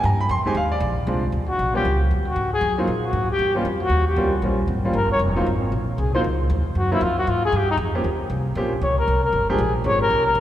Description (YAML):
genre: jazz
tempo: 232 BPM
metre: 4/4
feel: swing 61% on 8ths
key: Eb mixolydian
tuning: A4 = 440 Hz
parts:
  - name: clear grand piano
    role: accompaniment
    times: 0.0-10.2 s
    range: F3 to C6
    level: -25 LUFS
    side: equal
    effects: none
  - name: upright bass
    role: bass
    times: 0.0-10.4 s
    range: F1 to Bb2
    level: -23 LUFS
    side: equal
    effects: none
  - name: breathy trumpet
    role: melody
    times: 1.5-10.4 s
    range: Eb4 to Db5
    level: -22 LUFS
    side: left 2 dB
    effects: none
room: wet church reverb, RT60 3.1 s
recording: recorded in a church or concert hall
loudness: -19 LUFS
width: side -12 dB against mid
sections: 0.0-1.3 A section; 1.3-10.4 A section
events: trumpet solo 1.3-10.4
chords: 0.3 Fm7; 0.8 Bb9; 1.3 Eb7; 2.4 Ab7sus2; 3.4 Eb13; 5.5 Ab13; 7.5 Eb13; 9.6 Bb13